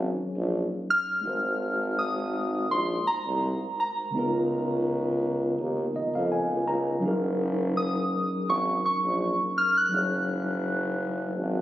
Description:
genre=contemporary R&B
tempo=83 BPM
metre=4/4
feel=swing 54% on 16ths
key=F# major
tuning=A4 = 440 Hz
part: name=mellow tine electric piano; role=accompaniment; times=0.0-11.6 s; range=C#3 to A#5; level=-29 LUFS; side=equal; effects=medium stereo tremolo
part: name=clear tuba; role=bass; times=0.0-11.6 s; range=F#1 to E#2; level=-29 LUFS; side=equal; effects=none
part: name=soft synth bell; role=melody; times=0.9-11.2 s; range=A#5 to F#6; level=-27 LUFS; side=equal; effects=chorus, tape echo
room=light reverb, small room ambience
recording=recorded on a phone in the room, studio reverb, compression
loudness=-24 LUFS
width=side -14 dB against mid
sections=0.0-7.0 A section; 7.0-11.6 B section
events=tine electric piano fill 5.6-7.0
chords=0.0 F#69; 1.3 G#9; 4.1 C#13; 7.0 F#69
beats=0.53 | 1.25 1.98 2.70 3.42 | 4.14 4.87 5.59 6.31 | 7.04 7.76 8.48 9.21 | 9.93 10.65 11.37

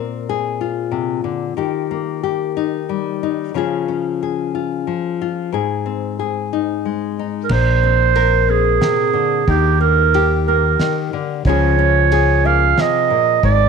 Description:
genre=acoustic folk duo or small band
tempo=91 BPM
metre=3/4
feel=straight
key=Eb major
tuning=A4 = 439 Hz
part: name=nylon-string guitar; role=accompaniment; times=0.0-13.7 s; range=Ab2 to Bb4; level=-20 LUFS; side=left 10 dB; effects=none
part: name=warm clarinet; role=second line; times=7.4-13.7 s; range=G4 to F5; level=-16 LUFS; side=right 12 dB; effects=none
part: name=fingered electric bass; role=bass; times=7.5-13.7 s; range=Ab1 to Eb2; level=-16 LUFS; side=equal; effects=none
part: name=cloth-damped thuddy drum kit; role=drums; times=7.5-13.6 s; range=crash cymbal, kick drum, ride cymbal, snare drum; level=-26 LUFS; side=equal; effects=none
room=moderate echo chamber reverb, RT60 1.6 s, studio ambience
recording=1960s-style stereo with parts hard left and right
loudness=-15 LUFS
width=side -5 dB against mid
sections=0.0-7.5 A section; 7.5-13.7 B section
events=clarinet solo 7.5-13.7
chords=0.0 Bbsus2; 1.6 Eb; 3.6 Db; 5.5 Ab; 7.5 Bbsus2; 9.5 Eb; 11.5 Db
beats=0.27 0.93 | 1.58 2.24 2.89 | 3.55 4.21 4.87 | 5.53 6.18 6.84 | 7.50 8.16 8.82 | 9.48 10.14 10.80 | 11.46 12.12 12.78 | 13.44

